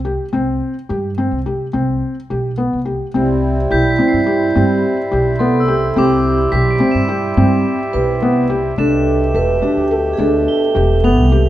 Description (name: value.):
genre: contemporary instrumental, chamber music in an uneven meter.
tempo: 213 BPM (eighths).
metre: 5/8.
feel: straight.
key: C major.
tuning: A4 = 440 Hz.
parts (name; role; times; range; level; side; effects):
felt-muted upright piano; arpeggios; 0.0-11.5 s; B3 to A4; -17 LUFS; left 2 dB; none.
upright bass; bass; 0.0-11.5 s; E1 to G2; -18 LUFS; right 1 dB; none.
pedal harmonium; sustained chords; 3.1-11.5 s; B2 to G4; -22 LUFS; right 1 dB; none.
vibraphone with soft mallets; second line; 3.2-11.5 s; E4 to B4; -19 LUFS; right 4 dB; none.
crotales; texture; 3.7-11.5 s; C6 to G7; -24 LUFS; equal; none.
room: light reverb.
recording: dark, warm production.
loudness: -13 LUFS.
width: side -13 dB against mid.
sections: 0.0-3.1 A section; 3.1-11.5 B section.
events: none.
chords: 0.0 C5; 3.1 Cmaj7; 8.8 Gadd9.